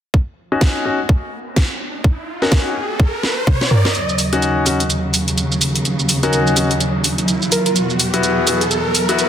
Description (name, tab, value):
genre	bass house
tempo	126 BPM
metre	4/4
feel	swing 59% on 16ths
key	Eb phrygian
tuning	A4 = 440 Hz
part	electronic kick drum	drums	0.1-3.6 s	none	-13 LUFS	equal	none
part	riser	sound effects	1.3-9.3 s	none	-24 LUFS	right 1 dB	none
part	clear concert grand piano	stabs	0.5-9.3 s	B3 to Gb4	-20 LUFS	left 3 dB	sidechain pumping, low-pass filter, dub echo
part	garage drum kit	drums	0.6-9.3 s	hi-hat, shaker, snare drum, toms	-19 LUFS	right 1 dB	none
part	soft struck synth lead	melody	2.4-7.7 s	Bb4	-25 LUFS	right 2 dB	chorus, dub echo
part	dark studio string section	sustained chords	3.9-9.3 s	Eb2 to Gb3	-19 LUFS	right 1 dB	sidechain pumping
room	light reverb, digital ambience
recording	dense, heavily limited modern master, high-pass filter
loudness	-15 LUFS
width	side -9 dB against mid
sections	0.1-3.9 A section; 3.9-9.3 B section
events	riser 1.3-3.9, 3.9-9.3; drum fill 3.2-3.9; build-up 3.9-9.3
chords	0.1 Ebm7; 7.8 Esus2